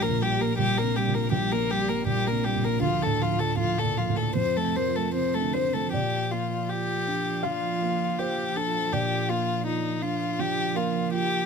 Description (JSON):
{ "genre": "neoclassical piano and strings", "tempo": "80 BPM", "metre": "4/4", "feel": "rubato", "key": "unclear", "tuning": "A4 = 440 Hz", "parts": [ { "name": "warm violin", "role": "melody", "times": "0.0-11.5 s", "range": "Eb4 to C5", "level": "-27 LUFS", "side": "left 5 dB", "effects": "none" }, { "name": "warm cello", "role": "second line", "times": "0.0-11.5 s", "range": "D3 to Bb3", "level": "-33 LUFS", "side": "right 6 dB", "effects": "none" }, { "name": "felt-muted upright piano", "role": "accompaniment", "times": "0.0-11.5 s", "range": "Bb1 to F5", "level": "-27 LUFS", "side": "right 3 dB", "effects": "none" } ], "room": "little or no reverb", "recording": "close, detailed microphones", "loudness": "-24 LUFS", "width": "side -6 dB against mid", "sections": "0.0-5.9 A section; 5.9-11.5 B section", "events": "none", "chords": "0.0 Gm/Bb; 2.8 Dm; 4.4 F; 5.9 Bb", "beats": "0.58 1.33 2.08 | 2.83 3.59 4.37 5.16 | 5.93 6.69 7.44 8.19 | 8.93 9.66 10.39 11.12" }